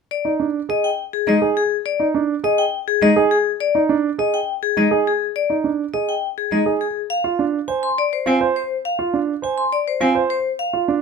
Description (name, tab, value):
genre	classical, minimalist pattern music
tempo	103 BPM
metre	3/4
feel	straight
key	Ab lydian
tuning	A4 = 440 Hz
part	vibraphone with hard mallets	melody	0.1-10.8 s	Ab4 to C6	-20 LUFS	left 6 dB	none
part	warm grand piano	arpeggios	0.2-11.0 s	D4 to C5	-20 LUFS	right 7 dB	none
part	rich cello	accompaniment	1.3-10.1 s	Ab3 to C4	-19 LUFS	left 1 dB	none
room	little or no reverb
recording	close, detailed microphones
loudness	-17 LUFS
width	side -5 dB against mid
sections	0.1-11.0 A section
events	none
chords	0.1 Ab5; 7.1 F5